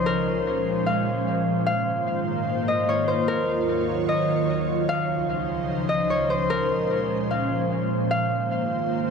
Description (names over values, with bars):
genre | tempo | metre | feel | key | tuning
hip hop | 149 BPM | 4/4 | half-time | Ab mixolydian | A4 = 436 Hz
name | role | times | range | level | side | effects
concert harp | melody | 0.0-9.1 s | Bb4 to F5 | -25 LUFS | left 1 dB | dub echo
ethereal airy pad | sustained chords | 0.0-9.1 s | Db2 to Db5 | -24 LUFS | right 1 dB | ensemble chorus, built-in reverb
room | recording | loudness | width
moderate echo chamber reverb, RT60 1.7 s | echo-heavy mix | -22 LUFS | side -6 dB against mid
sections
0.0-1.7 A section; 1.7-9.1 B section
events
none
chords
0.1 Bbm7; 1.7 Ab6; 3.3 Ebm7; 4.9 Dbmaj7; 6.5 Bbm7; 8.1 Ab6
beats
| 0.06 0.46 0.86 1.27 | 1.67 2.07 2.47 2.88 | 3.28 3.68 4.08 4.49 | 4.89 5.29 5.70 6.10 | 6.50 6.90 7.31 7.71 | 8.11 8.51 8.92